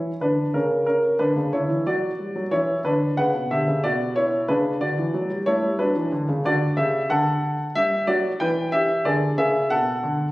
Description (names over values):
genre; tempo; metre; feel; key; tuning
classical, baroque-style suite movement for grand piano; 91 BPM; 4/4; rubato; B minor, D major from 6.4 s; A4 = 442 Hz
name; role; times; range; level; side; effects
warm baby grand piano; solo; 0.0-10.3 s; B2 to G5; -20 LUFS; equal; none
room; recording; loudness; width
wet recital hall reverb, RT60 1.4 s; recorded on a phone in the room, club reverb; -20 LUFS; side -18 dB against mid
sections
0.0-10.3 A section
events
none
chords
0.0 N.C.; 1.2 Bm; 6.4 D; 7.7 G; 9.0 Bm13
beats
0.53 | 1.19 1.86 2.52 3.17 | 3.83 4.48 5.13 5.79 | 6.43 7.08 7.74 8.39 | 9.05 9.70